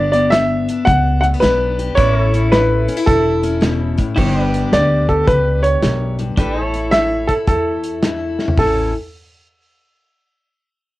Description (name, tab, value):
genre	honky-tonk and classic country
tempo	109 BPM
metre	4/4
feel	swing 66% on 8ths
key	A mixolydian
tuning	A4 = 440 Hz
part	bright upright piano	melody	0.0-8.9 s	A4 to F#5	-16 LUFS	right 1 dB	none
part	picked steel-string acoustic guitar	accompaniment	0.0-8.9 s	F#2 to A4	-22 LUFS	left 5 dB	cassette tape
part	pedal steel guitar	sustained chords	0.0-8.6 s	D4 to C#5	-25 LUFS	right 1 dB	cassette tape
part	upright bass	bass	0.0-8.9 s	E1 to E2	-19 LUFS	equal	tube saturation
part	natural country drum kit	drums	0.1-8.7 s	crash cymbal, hi-hat, kick drum, snare drum, toms	-19 LUFS	equal	cassette tape
room	light reverb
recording	home recording on cassette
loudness	-13 LUFS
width	side -17 dB against mid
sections	0.0-4.2 A section; 4.2-8.6 B section; 8.6-10.8 C section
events	drum fill 8.3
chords	0.0 G; 2.0 A; 4.2 G; 6.4 A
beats	0.32 0.87 1.42 | 1.97 2.52 3.07 3.62 | 4.17 4.72 5.27 5.82 | 6.38 6.92 7.48 8.03 | 8.58